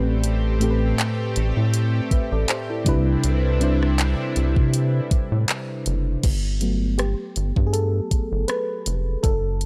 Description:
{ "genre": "contemporary R&B", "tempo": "80 BPM", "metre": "4/4", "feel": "swing 54% on 16ths", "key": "unclear", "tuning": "A4 = 442 Hz", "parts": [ { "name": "mellow FM electric piano", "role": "accompaniment", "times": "0.0-9.7 s", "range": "A2 to E5", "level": "-27 LUFS", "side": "equal", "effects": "chorus" }, { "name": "lush unison pad", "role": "sustained chords", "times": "0.0-6.2 s", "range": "C3 to G4", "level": "-33 LUFS", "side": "equal", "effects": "chorus" }, { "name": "rubbery square bass", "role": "bass", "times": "0.0-9.7 s", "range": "F1 to C3", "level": "-24 LUFS", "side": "equal", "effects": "none" }, { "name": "trap drum kit", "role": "drums", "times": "0.2-9.7 s", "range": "crash cymbal, handclaps, hi-hat, kick drum, rim click", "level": "-25 LUFS", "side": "equal", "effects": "none" } ], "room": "little or no reverb", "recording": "dry, gritty hardware recording", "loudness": "-22 LUFS", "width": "mono", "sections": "0.0-6.2 A section; 6.2-9.7 B section", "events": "FM electric piano solo 6.2-9.7", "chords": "0.0 Am7; 2.9 Cmaj7; 6.2 Gmaj7" }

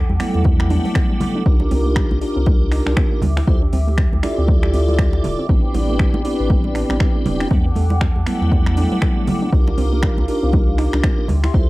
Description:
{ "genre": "deep house", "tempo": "119 BPM", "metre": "4/4", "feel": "swing 58% on 16ths", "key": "unclear", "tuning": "A4 = 440 Hz", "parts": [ { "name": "hollow soft pad", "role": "sustained chords", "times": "0.0-11.7 s", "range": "G4 to D6", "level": "-29 LUFS", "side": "equal", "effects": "chorus, sidechain pumping" }, { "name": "warm sub bass", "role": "bass", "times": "0.0-11.7 s", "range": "D1 to E2", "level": "-19 LUFS", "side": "equal", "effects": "sidechain pumping" }, { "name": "soft round pluck", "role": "arpeggios", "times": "0.1-11.6 s", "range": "F#3 to F4", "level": "-28 LUFS", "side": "right 2 dB", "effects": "chorus, cassette tape, sidechain pumping, tape echo" }, { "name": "congas", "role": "percussion", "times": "0.1-11.5 s", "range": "none", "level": "-28 LUFS", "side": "right 2 dB", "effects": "none" }, { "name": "tonewheel organ", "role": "stabs", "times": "0.2-11.7 s", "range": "F#3 to D5", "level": "-22 LUFS", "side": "equal", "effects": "chorus vibrato, slow rotary speaker, sidechain pumping, tape echo" }, { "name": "deep house drum kit", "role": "drums", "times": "0.2-11.5 s", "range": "finger snaps, hi-hat", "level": "-30 LUFS", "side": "equal", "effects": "overdrive" }, { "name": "electronic kick drum", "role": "drums", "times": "0.5-11.7 s", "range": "none", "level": "-17 LUFS", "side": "equal", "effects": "overdrive" } ], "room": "digital ambience", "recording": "dark, warm production", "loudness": "-15 LUFS", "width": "side -20 dB against mid", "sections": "0.0-11.7 A section", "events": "none", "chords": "0.0 Em11; 1.5 Cm11; 3.2 Dm11; 5.5 Am11; 7.5 Em11; 9.5 Cm11" }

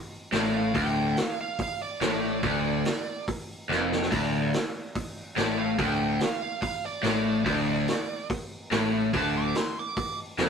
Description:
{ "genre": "blues rock power trio and southern rock", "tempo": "143 BPM", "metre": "4/4", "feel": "straight", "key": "D minor", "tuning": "A4 = 438 Hz", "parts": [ { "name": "crunchy overdriven guitar", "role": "riff", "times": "0.3-10.5 s", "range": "D2 to A2", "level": "-25 LUFS", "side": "left 1 dB", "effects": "none" }, { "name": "growling picked electric bass", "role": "bass", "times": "0.3-10.5 s", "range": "D1 to A1", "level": "-37 LUFS", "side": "equal", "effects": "overdrive" }, { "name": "vintage drum kit", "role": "drums", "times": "0.3-10.5 s", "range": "crash cymbal, hi-hat, kick drum, snare drum", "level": "-31 LUFS", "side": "right 1 dB", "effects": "none" }, { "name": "bluesy overdriven lead guitar", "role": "second line", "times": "0.4-10.2 s", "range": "D5 to D6", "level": "-33 LUFS", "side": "right 5 dB", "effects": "distortion" } ], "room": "light reverb", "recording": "rough rehearsal-room recording", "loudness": "-25 LUFS", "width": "side -6 dB against mid", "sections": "0.0-10.5 A section", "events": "lead electric guitar solo 0.0-10.5; drum fill 3.7-4.1", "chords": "0.0 D5" }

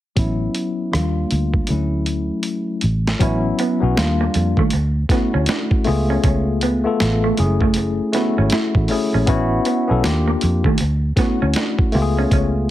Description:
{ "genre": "R&B, neo-soul", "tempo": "79 BPM", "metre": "4/4", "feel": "swing 61% on 16ths", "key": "A major", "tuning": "A4 = 438 Hz", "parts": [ { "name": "tine electric piano", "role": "accompaniment", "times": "0.2-12.7 s", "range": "E#3 to A4", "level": "-20 LUFS", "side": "left 3 dB", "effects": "medium stereo tremolo" }, { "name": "vintage muted fingered electric bass", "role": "bass", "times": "0.2-12.7 s", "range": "F#1 to D#3", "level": "-19 LUFS", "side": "right 1 dB", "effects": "none" }, { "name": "boom bap sampler-style drum kit", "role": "drums", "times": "0.2-12.5 s", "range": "hi-hat, kick drum, rim click, snare drum", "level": "-20 LUFS", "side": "right 1 dB", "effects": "none" }, { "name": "electric guitar through a small old amp", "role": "second line", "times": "3.2-12.5 s", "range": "A3 to E4", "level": "-24 LUFS", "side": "right 4 dB", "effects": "wide subtle chorus" } ], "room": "light reverb", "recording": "heavily compressed radio sound, multiband compression", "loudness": "-16 LUFS", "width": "side -14 dB against mid", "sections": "0.2-3.2 A section; 3.2-12.7 B section", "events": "drum fill 1.7-3.2", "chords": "0.2 A69; 0.9 D#maj9; 1.7 Dmaj9; 2.8 N.C.; 3.2 A69; 4.0 D#maj9; 4.7 Dmaj9; 5.9 C#7b13; 7.4 F#m9; 9.3 A69; 10.0 D#maj9; 10.8 Dmaj9; 11.9 C#7b13" }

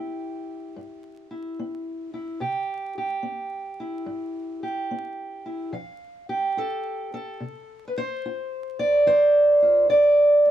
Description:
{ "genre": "acoustic country blues, solo or duo", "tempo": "72 BPM", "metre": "4/4", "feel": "swing 66% on 8ths", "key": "C major", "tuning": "A4 = 440 Hz", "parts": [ { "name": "fingerpicked steel-string acoustic guitar", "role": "solo", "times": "0.0-10.5 s", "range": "G2 to F5", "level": "-22 LUFS", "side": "right 1 dB", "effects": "none" } ], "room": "light reverb", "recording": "dark, warm production, vinyl crackle", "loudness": "-21 LUFS", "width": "side -11 dB against mid", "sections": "0.0-10.5 A section", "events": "none", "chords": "0.0 C; 5.7 F" }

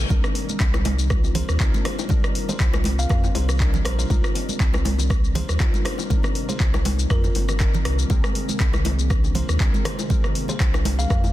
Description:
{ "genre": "afro house", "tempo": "120 BPM", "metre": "4/4", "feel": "swing 55% on 16ths", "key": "C minor", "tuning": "A4 = 440 Hz", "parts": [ { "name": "ethereal airy pad", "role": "sustained chords", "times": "0.0-11.3 s", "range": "C3 to D5", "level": "-36 LUFS", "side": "left 1 dB", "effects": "none" }, { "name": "warm analog keys", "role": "stabs", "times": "0.0-11.3 s", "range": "C4 to Bb4", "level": "-36 LUFS", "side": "left 4 dB", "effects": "chorus, sidechain pumping, digital delay" }, { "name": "warm sub bass", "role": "bass", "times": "0.0-11.3 s", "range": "G1 to F2", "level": "-23 LUFS", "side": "equal", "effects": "sidechain pumping" }, { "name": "marimba with soft mallets", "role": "arpeggios", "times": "0.1-11.2 s", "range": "Eb3 to F4", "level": "-33 LUFS", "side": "equal", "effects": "sidechain pumping, digital delay" }, { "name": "afro-pop drum kit", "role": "drums", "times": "0.1-11.3 s", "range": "handclaps, hi-hat, rim click, shaker", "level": "-29 LUFS", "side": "left 1 dB", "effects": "overdrive" }, { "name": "electronic kick drum", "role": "drums", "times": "0.1-11.2 s", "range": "none", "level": "-21 LUFS", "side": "equal", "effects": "overdrive" }, { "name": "congas", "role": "percussion", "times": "0.1-11.2 s", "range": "none", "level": "-31 LUFS", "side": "right 5 dB", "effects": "none" }, { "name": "bongos", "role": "percussion", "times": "0.3-11.3 s", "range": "none", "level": "-34 LUFS", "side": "left 6 dB", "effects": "none" }, { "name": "buzzing kalimba", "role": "melody", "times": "1.4-11.2 s", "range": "Bb4 to F5", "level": "-35 LUFS", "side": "equal", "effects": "vintage 12-bit sampler grit, digital delay" } ], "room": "digital ambience", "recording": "dense, heavily limited modern master", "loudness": "-19 LUFS", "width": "side -15 dB against mid", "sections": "0.0-11.3 A section", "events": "none", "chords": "0.1 Cm9; 8.1 Abadd9" }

